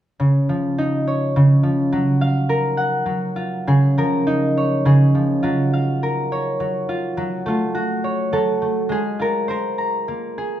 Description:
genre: children's music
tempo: 103 BPM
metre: 3/4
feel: rubato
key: Db major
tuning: A4 = 440 Hz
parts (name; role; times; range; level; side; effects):
- concert harp; melody; 0.2-10.6 s; Db3 to Bb5; -17 LUFS; equal; none
room: moderate large studio reverb, RT60 1.4 s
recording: band playing live in one room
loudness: -17 LUFS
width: side -11 dB against mid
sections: 0.2-3.7 A section; 3.7-10.6 B section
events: none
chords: 0.2 Dbadd9; 1.9 Gbmaj7; 3.7 Dbadd9; 5.4 Gbmaj7; 7.2 Gbm; 8.9 Fmadd11/Ab; 9.5 Abadd9

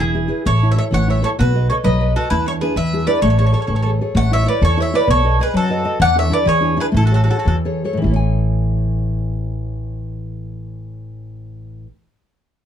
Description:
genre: italian folk, Italian serenade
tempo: 98-133 BPM (dotted quarters)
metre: 6/8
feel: straight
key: A major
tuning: A4 = 437 Hz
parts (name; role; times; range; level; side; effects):
- mandolin; melody; 0.0-7.6 s; G#4 to F#5; -20 LUFS; equal; none
- bowl-back mandolin; second line; 0.0-7.5 s; E4 to D5; -24 LUFS; right 4 dB; none
- nylon-string guitar; accompaniment; 0.0-12.0 s; A2 to G#5; -22 LUFS; left 1 dB; none
- upright bass; bass; 0.0-11.9 s; E1 to F#2; -18 LUFS; equal; none
room: light reverb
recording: dark, warm production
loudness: -14 LUFS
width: side -9 dB against mid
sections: 0.0-4.2 A section; 4.2-8.0 B section; 8.0-10.4 C section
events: slowing down 6.0-8.0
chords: 0.0 E; 0.5 A; 1.4 B7; 2.3 E7sus4; 2.8 E7; 3.2 Amaj7; 4.2 A; 5.1 B7; 6.0 E7sus4; 6.5 E7; 6.9 Amaj7

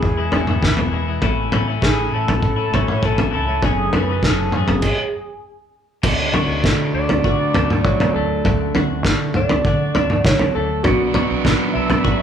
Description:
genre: indie rock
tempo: 100 BPM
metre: 4/4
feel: straight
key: unclear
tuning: A4 = 438 Hz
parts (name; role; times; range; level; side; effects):
- overdriven synth lead; melody; 0.0-12.2 s; F#4 to E5; -23 LUFS; right 2 dB; chorus
- twelve-string electric guitar; riff; 0.0-12.2 s; E2 to G#4; -24 LUFS; left 5 dB; none
- deep dub picked electric bass; bass; 0.0-12.2 s; E1 to D3; -24 LUFS; right 1 dB; none
- cloth-damped thuddy drum kit; drums; 0.0-12.2 s; crash cymbal, kick drum, snare drum, toms; -18 LUFS; equal; none
- overdriven electric guitar; riff; 6.0-12.2 s; F#3 to F#4; -24 LUFS; right 5 dB; none
room: moderate large studio reverb, RT60 1.3 s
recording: band playing live in one room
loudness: -16 LUFS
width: side -8 dB against mid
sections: 0.0-6.0 A section; 6.0-12.2 B section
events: stop 4.8-6.0; analog synth lead solo 6.0-12.2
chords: 0.0 E; 1.2 A; 3.6 F#madd9; 4.8 N.C.; 6.0 D; 10.8 Bm

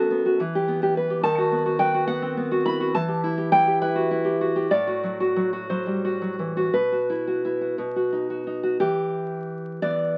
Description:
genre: romantic piece for solo classical guitar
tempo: 55-74 BPM (dotted quarters)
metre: 6/8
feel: rubato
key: E minor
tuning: A4 = 440 Hz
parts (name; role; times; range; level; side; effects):
- nylon-string guitar; solo; 0.0-10.2 s; F#2 to B5; -24 LUFS; equal; none
room: moderate studio ambience, RT60 0.5 s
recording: very old 78 rpm record, vinyl crackle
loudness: -24 LUFS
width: mono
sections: 0.0-8.8 A section; 8.8-10.2 B section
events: none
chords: 0.4 Em; 1.2 B7/D#; 3.0 Em; 4.7 F#dim/A; 6.7 Bsus4; 7.8 B; 8.8 Em

